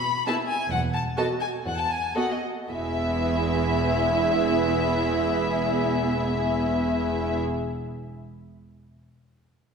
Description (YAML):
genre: quick classical-period movement for string orchestra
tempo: 109-137 BPM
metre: 4/4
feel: rubato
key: E major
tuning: A4 = 440 Hz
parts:
  - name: rich chamber violin section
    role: melody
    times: 0.0-7.4 s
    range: D#5 to B5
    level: -28 LUFS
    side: left 4 dB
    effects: none
  - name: clear chamber cello section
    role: bass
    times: 0.0-7.4 s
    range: E2 to B2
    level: -33 LUFS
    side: right 2 dB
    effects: none
  - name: rich chamber violin section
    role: second line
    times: 0.3-7.4 s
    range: G#4 to E5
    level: -29 LUFS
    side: left 1 dB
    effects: none
  - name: rich studio viola section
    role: accompaniment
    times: 0.3-7.4 s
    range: B3 to F#4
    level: -27 LUFS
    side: right 3 dB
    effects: none
  - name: rich chamber double bass section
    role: bass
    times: 0.7-7.4 s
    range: E1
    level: -32 LUFS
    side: right 2 dB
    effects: none
room: wet concert hall reverb, RT60 1.9 s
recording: heard from further back in the room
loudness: -22 LUFS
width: side -6 dB against mid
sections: 0.0-2.7 A section; 2.7-6.9 B section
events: slowing down 0.0-2.7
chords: 0.0 E; 0.7 N.C.; 2.7 E